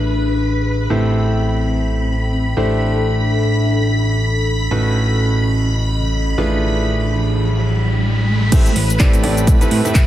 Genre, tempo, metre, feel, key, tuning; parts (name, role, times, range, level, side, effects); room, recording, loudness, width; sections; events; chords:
piano house; 126 BPM; 4/4; swing 58% on 16ths; A4 = 436 Hz
string machine, violins; sustained chords; 0.0-10.1 s; B4 to B5; -25 LUFS; equal; ensemble chorus, sidechain pumping
bright concert grand piano; riff; 0.0-10.0 s; A2 to E5; -22 LUFS; right 1 dB; vintage 12-bit sampler grit, sidechain pumping, dub echo
fat analog bass; bass; 0.0-9.8 s; A1 to A2; -18 LUFS; equal; sidechain pumping
warbly tape-like pad; texture; 0.0-8.5 s; C4 to G5; -24 LUFS; left 1 dB; chorus, built-in reverb, sidechain pumping
riser; sound effects; 6.0-8.5 s; -27 LUFS; right 2 dB
electronic kick drum; drums; 8.5-10.1 s; -12 LUFS; equal
house drum kit; drums; 8.5-10.1 s; crash cymbal, handclaps, hi-hat, shaker; -23 LUFS; equal; low-pass filter on cymbals, low-pass filter on hats, low-pass filter on perc, low-pass filter on snare
light reverb; -14 LUFS; side -13 dB against mid
0.0-8.5 A section; 8.5-10.1 B section
riser 6.0-8.5; drop 8.5-10.1
0.0 E7b9/A; 0.9 C69/A; 4.7 B9/A; 6.4 E7b9/A; 8.5 C69/A